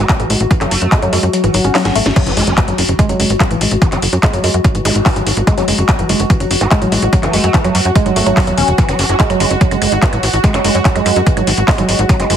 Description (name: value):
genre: psychedelic trance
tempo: 145 BPM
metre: 4/4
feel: straight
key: F# minor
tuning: A4 = 441 Hz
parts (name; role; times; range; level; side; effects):
- vowel-sweep wobble bass; second line; 0.0-12.3 s; A3 to C#4; -26 LUFS; right 3 dB; chorus, sidechain pumping, high-pass filter, tape echo
- pulsing gated texture; sustained chords; 0.0-12.4 s; F#4; -20 LUFS; left 1 dB; chorus, built-in reverb, sidechain pumping
- tight sequencer bass; bass; 0.0-12.4 s; E1 to F#2; -16 LUFS; equal; none
- woody wave-folded pluck; riff; 0.1-12.4 s; E3 to C#4; -18 LUFS; moving between left 4 dB and right 6 dB; chorus, auto-pan, sidechain pumping, digital delay
- electronic kick drum; drums; 0.1-12.2 s; none; -13 LUFS; equal; none
- techno drum kit; drums; 0.1-12.4 s; crash cymbal, handclaps, hi-hat, snare drum; -18 LUFS; left 1 dB; none
- swell, impact and zap; sound effects; 1.4-5.0 s; none; -26 LUFS; equal; none
room: light reverb, digital ambience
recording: heavily compressed radio sound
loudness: -11 LUFS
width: side -9 dB against mid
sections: 0.0-2.2 A section; 2.2-12.4 B section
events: kick drops out 1.3-2.2; swell 1.4-2.2; drum fill 1.7-2.2; drop 2.2-12.4; impact 2.2-3.8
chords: 0.0 F#5